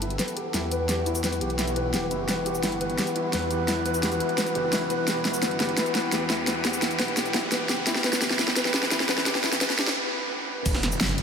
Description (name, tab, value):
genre	dark technical drum and bass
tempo	172 BPM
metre	4/4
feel	straight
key	E minor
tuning	A4 = 440 Hz
part	metallic inharmonic drone	sustained chords	0.0-10.6 s	E3 to B4	-29 LUFS	left 1 dB	chorus, built-in reverb, sidechain pumping
part	felt-muted upright piano	arpeggios	0.0-9.9 s	E4 to B4	-31 LUFS	left 2 dB	sidechain pumping, low-pass filter, ping-pong delay
part	snarling distorted saw bass	bass	0.0-11.2 s	E1 to E2	-34 LUFS	right 1 dB	overdrive
part	dubstep drum kit	drums	0.0-11.2 s	cabasa, crash cymbal, hi-hat, snare drum	-26 LUFS	equal	overdrive
part	riser and impact	sound effects	2.0-11.2 s	none	-34 LUFS	right 1 dB	none
part	crunchy breakbeat drum kit	drums	10.7-11.2 s	hi-hat, snare drum	-36 LUFS	equal	none
part	electronic kick drum	drums	10.7 s	none	-26 LUFS	equal	overdrive
room	wet huge ambient reverb, RT60 7.5 s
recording	dreamy mix soaked in reverb, high-pass filter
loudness	-23 LUFS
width	side -6 dB against mid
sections	0.0-10.7 A section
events	build-up 0.0-10.7; drum fill 0.0-10.0; filter sweep on felt piano 0.0-10.7; filter sweep 0.0-10.7; riser 2.0-10.0; break 10.0-10.7; impact 10.7-11.2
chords	0.0 Em